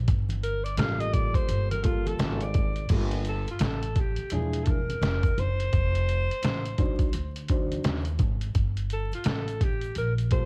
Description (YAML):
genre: hip hop, jazz-hop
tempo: 85 BPM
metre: 4/4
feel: swing 62% on 16ths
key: G minor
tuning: A4 = 440 Hz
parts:
  - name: upright bass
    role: bass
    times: 0.0-10.5 s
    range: E1 to Eb2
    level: -32 LUFS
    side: equal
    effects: none
  - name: trip hop sampler-style drum kit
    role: drums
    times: 0.1-10.5 s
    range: crash cymbal, hi-hat, kick drum, snare drum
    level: -29 LUFS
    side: equal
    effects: cassette tape
  - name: egg shaker and congas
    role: percussion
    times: 0.1-10.5 s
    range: none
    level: -44 LUFS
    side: equal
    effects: none
  - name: mellow alto saxophone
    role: melody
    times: 0.4-10.5 s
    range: F4 to F5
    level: -35 LUFS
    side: equal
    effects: cassette tape
  - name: dark grand piano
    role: accompaniment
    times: 0.8-10.5 s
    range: F3 to C5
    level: -37 LUFS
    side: equal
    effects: cassette tape
room: small room ambience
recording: home recording on cassette, vinyl crackle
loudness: -27 LUFS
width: mono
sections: 0.0-2.9 A section; 2.9-10.5 B section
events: alto saxophone solo 0.0-2.9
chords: 0.0 Gm9; 4.3 E7b9; 5.7 F7; 7.1 D7b9; 8.6 Gmadd9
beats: | 0.08 0.79 1.49 2.20 | 2.90 3.61 4.32 5.02 | 5.73 6.43 7.14 7.84 | 8.55 9.26 9.96